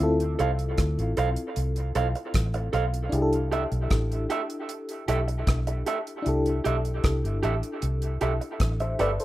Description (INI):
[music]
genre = lovers rock reggae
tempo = 77 BPM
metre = 4/4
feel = straight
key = C major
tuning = A4 = 440 Hz
[part]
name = FM electric piano with tremolo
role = accompaniment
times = 0.0-9.2 s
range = C4 to E5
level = -30 LUFS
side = left 2 dB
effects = none
[part]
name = vintage muted fingered electric bass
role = bass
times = 0.0-9.2 s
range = G1 to D2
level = -27 LUFS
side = equal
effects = none
[part]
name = damped 70s drum kit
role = drums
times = 0.0-9.2 s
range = hi-hat, kick drum, rim click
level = -28 LUFS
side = equal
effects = none
[part]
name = electric guitar through a small old amp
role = stabs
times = 0.4-9.1 s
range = G4 to F5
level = -30 LUFS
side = right 4 dB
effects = dub echo
[sound]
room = moderate studio reverb, RT60 0.5 s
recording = rough home demo mix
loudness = -24 LUFS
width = side -15 dB against mid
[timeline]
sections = 0.0-9.2 A section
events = none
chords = 0.0 Dm7; 3.1 C6